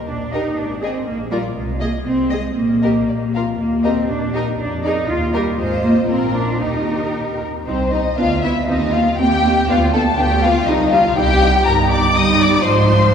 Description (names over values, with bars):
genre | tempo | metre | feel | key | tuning
quick classical-period movement for string orchestra | 120 BPM | 2/4 | rubato | Eb major, C minor from 7.7 s | A4 = 438 Hz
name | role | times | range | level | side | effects
dark studio double bass section | bass | 0.1-13.1 s | G1 to F2 | -22 LUFS | right 1 dB | none
rich studio cello section | bass | 0.1-13.1 s | C2 to F4 | -20 LUFS | right 1 dB | none
warm studio violin section | melody | 0.3-13.1 s | Bb4 to Eb6 | -20 LUFS | left 3 dB | none
rich studio violin section | second line | 0.3-13.1 s | C4 to Eb5 | -23 LUFS | left 1 dB | none
warm studio viola section | accompaniment | 0.3-13.1 s | F3 to Ab4 | -23 LUFS | right 1 dB | none
room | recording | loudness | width
wet church reverb, RT60 3.3 s | recorded in a church or concert hall, small room ambience | -15 LUFS | side -7 dB against mid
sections
0.0-7.7 A section; 7.7-13.1 B section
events
none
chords
0.0 Eb; 0.6 Ab; 1.1 Bb; 1.6 Ab/C; 2.6 Eb/Bb; 3.1 Bb5; 3.6 Eb; 4.6 Bb7/F; 5.1 Eb; 5.6 Ab6; 6.1 Bb; 6.6 Eb; 7.7 Cm; 8.2 Bdim/D; 8.7 Cm/Eb; 9.7 Dm6; 10.7 Cm; 11.7 Eb/G